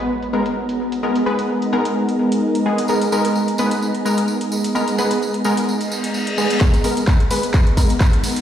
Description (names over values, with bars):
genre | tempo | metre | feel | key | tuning
bass house | 129 BPM | 4/4 | swing 55% on 16ths | G# minor | A4 = 441 Hz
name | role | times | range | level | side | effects
sweeping resonant pad | sustained chords | 0.0-8.4 s | G#3 to A#4 | -23 LUFS | equal | chorus, sidechain pumping
impact, reverse cymbal and riser | sound effects | 0.0-1.0, 5.9-8.4 s | none | -30 LUFS | left 3 dB | none
ethereal airy pad | texture | 0.0-8.4 s | B3 to A#5 | -24 LUFS | right 1 dB | ensemble chorus, built-in reverb, sidechain pumping
big-room dance drum kit | drums | 0.2-8.4 s | handclaps, hi-hat | -29 LUFS | equal | overdrive, low-pass filter on hats, studio ambience, low-pass filter on snare
orchestra-hit-like synth stab | stabs | 0.3-7.9 s | G#3 to B4 | -21 LUFS | left 1 dB | built-in reverb, sidechain pumping, tape echo
tambourine | percussion | 2.9-8.4 s | none | -30 LUFS | right 3 dB | none
electronic kick drum | drums | 6.6-8.1 s | none | -15 LUFS | equal | overdrive, studio ambience
room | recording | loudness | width
moderate plate reverb, RT60 1.7 s, digital ambience | played on a big sound system in a bare room, stone room reverb | -16 LUFS | side -10 dB against mid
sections
0.0-6.6 A section; 6.6-8.4 B section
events
impact 0.0-1.0; filter sweep on analog synth pad 0.0-6.6; reverse cymbal 5.9-6.6; build-up 6.6-8.4; drum fill 6.6-8.4; filter sweep on synth stab 6.6-8.4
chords
0.0 G#madd9